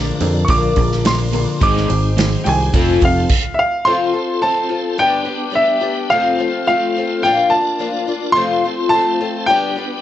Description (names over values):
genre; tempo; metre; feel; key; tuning
folk rock and heartland rock; 107 BPM; 4/4; straight; F major; A4 = 440 Hz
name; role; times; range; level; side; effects
warm concert grand piano; melody; 0.0-10.0 s; D5 to D6; -18 LUFS; equal; none
picked twelve-string acoustic guitar; accompaniment; 0.0-10.0 s; F2 to Bb4; -20 LUFS; left 5 dB; none
tonewheel organ; sustained chords; 0.0-10.0 s; B3 to D5; -26 LUFS; right 2 dB; slow rotary speaker, overdrive, chorus vibrato
crunchy overdriven guitar; riff; 0.0-3.3 s; Ab2 to F4; -21 LUFS; equal; none
picked electric bass; bass; 0.0-3.2 s; F1 to F2; -18 LUFS; right 1 dB; none
loose indie drum kit; drums; 0.2-3.4 s; crash cymbal, hi-hat, kick drum, snare drum; -19 LUFS; right 1 dB; none
egg shaker; percussion; 0.2-3.1 s; none; -41 LUFS; right 17 dB; none
room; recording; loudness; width
light reverb; nothing above 8.0 kHz; -14 LUFS; side -12 dB against mid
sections
0.0-3.9 A section; 3.9-10.0 B section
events
grand piano solo 0.0-3.9; stop 3.3-3.9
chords
0.0 Bb; 1.6 Ab; 2.7 F; 5.0 G; 6.1 F; 7.2 Bb; 8.4 F; 9.5 G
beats
0.50 1.06 | 1.62 2.18 2.74 3.31 | 3.87 4.43 4.99 5.55 | 6.11 6.67 7.23 7.79 | 8.36 8.92 9.48